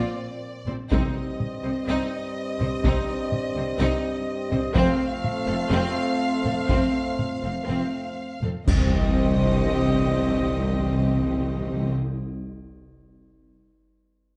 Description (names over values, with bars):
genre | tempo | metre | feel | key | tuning
cinematic, epic orchestral film score | 124 BPM | 4/4 | straight | C dorian | A4 = 442 Hz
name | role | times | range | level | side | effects
warm studio violin section | melody | 0.0-11.9 s | D5 to F5 | -39 LUFS | equal | none
rich symphonic violin section | second line | 0.0-11.9 s | C4 to C5 | -35 LUFS | equal | none
warm symphonic viola section | accompaniment | 0.0-11.9 s | C4 | -36 LUFS | equal | none
mellow French horn section | sustained chords | 0.0-11.9 s | C4 to C5 | -34 LUFS | equal | none
warm trombone section | sustained chords | 0.0-11.9 s | F2 to A3 | -36 LUFS | equal | none
dark trumpet section | stabs | 0.0-11.9 s | D5 to F5 | -36 LUFS | equal | none
rich symphonic cello section | bass | 0.0-11.9 s | C2 to C3 | -31 LUFS | equal | none
rich symphonic double bass section | bass | 0.7-11.9 s | F1 to C2 | -32 LUFS | equal | none
solo taiko drums | drums | 0.7-9.6 s | none | -30 LUFS | equal | none
timpani | percussion | 0.9-1.6, 8.7-11.9 s | C3 | -31 LUFS | equal | none
clash cymbals and concert bass drum | percussion | 8.7-9.6 s | none | -31 LUFS | equal | none
room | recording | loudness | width
wet recital hall reverb, RT60 1.5 s | nothing above 10.4 kHz | -24 LUFS | mono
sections
0.0-8.7 A section; 8.7-12.5 B section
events
band accent 8.7-9.2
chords
0.0 Bbadd9; 0.9 Cm; 4.8 F; 8.7 Cm